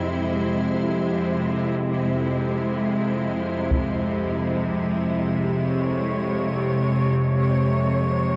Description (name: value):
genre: dark ambient drone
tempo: free time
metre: none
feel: none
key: unclear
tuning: A4 = 440 Hz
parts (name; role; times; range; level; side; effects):
- rich studio cello section; sustained chords; 0.0-8.4 s; Ab3 to Db5; -28 LUFS; equal; none
- old church bells; arpeggios; 0.0-1.2 s; none; barely audible; none; none
- bowed-like drone; drone; 0.0-8.4 s; F2 to C3; -26 LUFS; equal; built-in reverb
- icy glass pad; texture; 0.0-8.4 s; G4 to C5; -38 LUFS; equal; chorus, built-in reverb
- taiko ensemble; percussion; 3.7-3.9 s; none; -32 LUFS; equal; low-pass filter on perc
room: wet huge ambient reverb, RT60 8.6 s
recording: worn, warbling old tape, cassette tape, warbly pitch drift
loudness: -23 LUFS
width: mono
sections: 0.0-8.4 A section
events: none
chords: 0.0 Fm; 3.7 Db/F